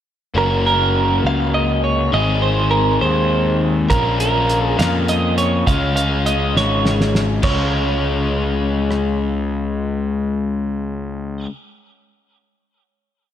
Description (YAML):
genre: indie rock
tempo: 68 BPM (dotted quarters)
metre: 6/8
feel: straight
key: Db major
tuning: A4 = 442 Hz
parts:
  - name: overdriven electric guitar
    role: riff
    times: 0.3-11.5 s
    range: Eb3 to Ab4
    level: -20 LUFS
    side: left 5 dB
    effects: slapback echo
  - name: fuzz picked electric bass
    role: bass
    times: 0.3-11.5 s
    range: Gb1 to F2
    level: -20 LUFS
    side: right 1 dB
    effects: overdrive
  - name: twelve-string electric guitar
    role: melody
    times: 0.4-11.5 s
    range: Bb4 to F5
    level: -20 LUFS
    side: right 3 dB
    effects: slapback echo, tape echo
  - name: cloth-damped thuddy drum kit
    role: drums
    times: 3.9-9.0 s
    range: crash cymbal, hi-hat, kick drum, rim click, snare drum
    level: -22 LUFS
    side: right 1 dB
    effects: none
room: moderate lush hall reverb, RT60 1.9 s, studio ambience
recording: big arena sound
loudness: -16 LUFS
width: side -10 dB against mid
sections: 0.4-7.4 interlude; 7.4-11.0 final chord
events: drum fill 6.6-7.4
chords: 0.4 Gb; 2.1 Ab; 3.9 Bbm; 5.7 Db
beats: | 0.35 1.24 | 2.13 3.02 | 3.90 4.79 | 5.67 6.55 | 7.44 8.32 | 9.20 10.09